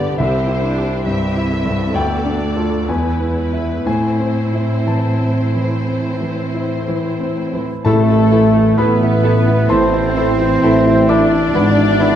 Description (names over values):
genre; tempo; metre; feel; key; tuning
classical; 59-71 BPM; 4/4; rubato; A minor; A4 = 439 Hz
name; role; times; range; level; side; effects
clear grand piano; melody; 0.0-12.2 s; C2 to D6; -18 LUFS; left 1 dB; none
warm symphonic violin section; melody; 0.0-12.1 s; A4 to E5; -29 LUFS; left 3 dB; none
rich symphonic viola section; accompaniment; 0.0-12.1 s; E3 to A4; -25 LUFS; right 1 dB; none
rich symphonic cello section; bass; 0.0-12.2 s; C2 to D4; -22 LUFS; right 2 dB; none
warm cor anglais; second line; 7.8-12.2 s; A3 to D4; -24 LUFS; right 1 dB; none
mellow bassoon; accompaniment; 7.8-12.1 s; A3 to B3; -26 LUFS; right 3 dB; none
warm trombone section; sustained chords; 7.8-12.2 s; E3 to B3; -22 LUFS; right 4 dB; none
dark clarinet; second line; 7.9-12.2 s; E4; -24 LUFS; left 1 dB; none
rich symphonic violin section; second line; 7.9-12.2 s; A4 to D5; -25 LUFS; left 4 dB; none
small flute group; second line; 7.9-12.2 s; A4 to D5; -22 LUFS; left 2 dB; none
warm French horn section; sustained chords; 7.9-12.2 s; A3 to D4; -21 LUFS; left 4 dB; none
clear symphonic double bass section; bass; 7.9-12.2 s; G#1 to A1; -20 LUFS; right 2 dB; none
warm tuba; bass; 7.9-12.2 s; G#1 to A1; -22 LUFS; right 1 dB; none
timpani; percussion; 7.9-9.2 s; A2; -22 LUFS; left 2 dB; none
room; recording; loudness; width
wet scoring stage reverb, RT60 1.9 s; dark, warm production; -13 LUFS; side -10 dB against mid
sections
0.0-7.9 A section; 7.9-12.2 B section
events
none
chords
0.2 C; 2.0 Dm; 2.9 E; 3.9 Am; 11.5 E/G#